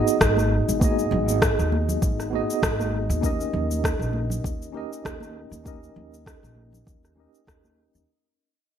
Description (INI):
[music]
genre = sunset chillout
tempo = 99 BPM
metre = 4/4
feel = swing 55% on 16ths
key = unclear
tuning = A4 = 441 Hz
[part]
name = bright tine electric piano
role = accompaniment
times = 0.0-8.1 s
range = B3 to D#5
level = -26 LUFS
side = moving between left 3 dB and right 4 dB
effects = medium stereo tremolo, auto-pan, low-pass filter, ping-pong delay
[part]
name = electronic cabasa and rim click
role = drums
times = 0.1-8.1 s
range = none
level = -26 LUFS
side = equal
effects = overdrive, gated reverb
[part]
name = upright bass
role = bass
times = 0.2-8.0 s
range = G#1 to D#2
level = -26 LUFS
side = equal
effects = none
[part]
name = electronic kick drum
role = drums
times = 0.2-7.6 s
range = none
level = -26 LUFS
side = equal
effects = overdrive
[part]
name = congas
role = percussion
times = 0.4-7.8 s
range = none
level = -32 LUFS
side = right 2 dB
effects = none
[sound]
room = moderate plate reverb, RT60 1.7 s, digital ambience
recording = bright 1980s-style digital production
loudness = -21 LUFS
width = side -9 dB against mid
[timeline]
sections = 0.0-8.1 A section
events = fade-out 0.0-8.1; filter sweep on tine electric piano 0.0-8.1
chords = 0.0 G#m7; 3.2 D#7